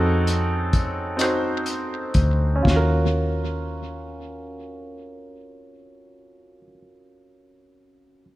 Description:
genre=slow six-eight R&B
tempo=39-45 BPM (dotted quarters)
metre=6/8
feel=straight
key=Eb dorian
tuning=A4 = 440 Hz
part: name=clear baby grand piano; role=accompaniment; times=0.0-8.2 s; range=C4 to C5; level=-25 LUFS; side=right 1 dB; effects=low-pass filter
part: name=vintage muted fingered electric bass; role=bass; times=0.0-6.7 s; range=D2 to F2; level=-22 LUFS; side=equal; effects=none
part: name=cloth-damped thuddy drum kit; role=drums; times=0.3-2.9 s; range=finger snaps, hi-hat, kick drum, snare drum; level=-23 LUFS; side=left 1 dB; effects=tape echo
room=light reverb, small room ambience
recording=echo-heavy mix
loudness=-20 LUFS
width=side -16 dB against mid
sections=0.0-2.7 A section; 2.7-5.7 B section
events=slowing down 0.0-2.7; filter sweep on grand piano 0.0-2.7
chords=0.0 F7b9; 2.7 Ebm9

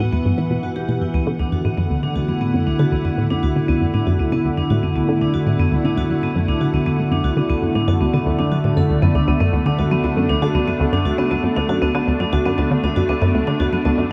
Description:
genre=ambient, sequencer-driven space music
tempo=118 BPM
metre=4/4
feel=straight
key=D major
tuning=A4 = 440 Hz
part: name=evolving wavetable pad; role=sustained chords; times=0.0-14.1 s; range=D3 to F#5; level=-24 LUFS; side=equal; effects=chorus, built-in reverb
part: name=vibraphone with hard mallets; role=arpeggios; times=0.0-14.0 s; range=B3 to B4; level=-25 LUFS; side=equal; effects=delay
part: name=tight sequenced synth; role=riff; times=0.0-14.1 s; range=D2 to F#3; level=-22 LUFS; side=equal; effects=chorus, delay
room=wet huge ambient reverb, RT60 7.5 s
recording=none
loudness=-19 LUFS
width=mono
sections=0.0-14.1 A section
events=fade-in on vibraphone 0.0-14.1; filter sweep on synth arpeggio sound 0.0-14.1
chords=0.0 Emadd9; 1.1 D6

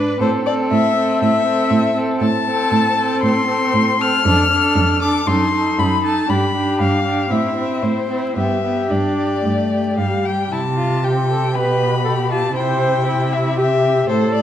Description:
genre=quick classical-period movement for string quartet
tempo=118 BPM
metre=4/4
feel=rubato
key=C major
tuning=A4 = 440 Hz
part: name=rich violin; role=melody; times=0.0-14.4 s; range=B4 to F6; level=-20 LUFS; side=left 5 dB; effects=none
part: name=warm violin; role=second line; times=0.0-14.4 s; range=E4 to B4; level=-24 LUFS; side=left 1 dB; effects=none
part: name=warm viola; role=accompaniment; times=0.0-14.4 s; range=G3 to C5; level=-21 LUFS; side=right 1 dB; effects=none
part: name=warm cello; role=bass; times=0.0-14.4 s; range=F2 to C3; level=-20 LUFS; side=right 2 dB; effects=none
room=wet concert hall reverb, RT60 1.9 s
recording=dark, warm production, vinyl crackle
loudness=-15 LUFS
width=side -10 dB against mid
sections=0.0-10.5 A section; 10.5-14.4 B section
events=none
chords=0.2 Am; 4.3 Dm/F; 5.3 F#dim7; 6.3 G; 7.3 Am; 8.4 G; 10.5 C5; 11.5 G/B; 12.6 C

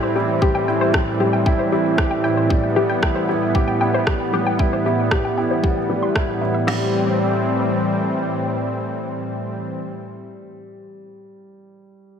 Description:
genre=piano and strings electronica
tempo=115 BPM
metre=4/4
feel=straight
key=A minor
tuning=A4 = 439 Hz
part: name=lush unison pad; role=sustained chords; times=0.0-9.8 s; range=A2 to C4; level=-21 LUFS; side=equal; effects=chorus, sidechain pumping
part: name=analog pluck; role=arpeggios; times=0.0-6.9 s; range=G4 to C6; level=-25 LUFS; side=left 5 dB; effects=chorus, sidechain pumping, ping-pong delay
part: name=warm upright piano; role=riff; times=0.0-12.2 s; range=G3 to G4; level=-23 LUFS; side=right 1 dB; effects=ping-pong delay
part: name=organic electronic drum kit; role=drums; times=0.4-6.8 s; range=crash cymbal, kick drum, snare drum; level=-21 LUFS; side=equal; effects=studio reverb
part: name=electronic rim click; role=drums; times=0.9-6.3 s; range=none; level=-25 LUFS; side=equal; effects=studio reverb
room=moderate lush hall reverb, RT60 1.6 s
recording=none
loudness=-17 LUFS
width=side -7 dB against mid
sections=0.0-6.7 A section; 6.7-10.8 B section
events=filter sweep on synth arpeggio sound 0.0-6.7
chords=0.0 C/A; 6.7 Am7

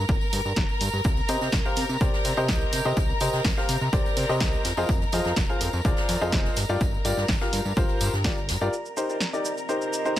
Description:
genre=piano house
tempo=125 BPM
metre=4/4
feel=straight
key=C minor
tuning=A4 = 440 Hz
part: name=rich studio string section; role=sustained chords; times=0.0-10.2 s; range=Bb4 to Bb5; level=-32 LUFS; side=equal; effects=sidechain pumping, low-pass filter
part: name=fat analog bass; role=bass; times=0.0-8.7 s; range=F1 to C3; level=-28 LUFS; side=equal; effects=sidechain pumping
part: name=electronic kick drum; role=drums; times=0.1-8.3 s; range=none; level=-26 LUFS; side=equal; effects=overdrive, studio reverb
part: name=tambourine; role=percussion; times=0.1-8.7 s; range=none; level=-38 LUFS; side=right 2 dB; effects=none
part: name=punchy analog drum machine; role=drums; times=0.3-10.2 s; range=hi-hat, shaker, snare drum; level=-31 LUFS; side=equal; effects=studio reverb
part: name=jazz brush drum kit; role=drums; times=1.1-8.6 s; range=hi-hat, snare drum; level=-38 LUFS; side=left 2 dB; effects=sidechain pumping on hats, high-pass filter on hats, studio reverb, high-pass filter on snare, high-pass filter on room
part: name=clear upright piano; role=riff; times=1.3-10.2 s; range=Eb4 to F5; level=-28 LUFS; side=left 1 dB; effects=sidechain pumping, digital delay
part: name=warbly tape-like pad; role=texture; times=9.3-10.2 s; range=C4 to Eb5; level=-35 LUFS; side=right 6 dB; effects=chorus, built-in reverb, sidechain pumping
room=small room ambience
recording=none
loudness=-22 LUFS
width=side -12 dB against mid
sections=0.0-8.7 A section; 8.7-10.2 B section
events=none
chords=0.0 Gm; 1.0 Cm7; 4.6 Fm7; 6.6 Gm7; 8.7 Cm7

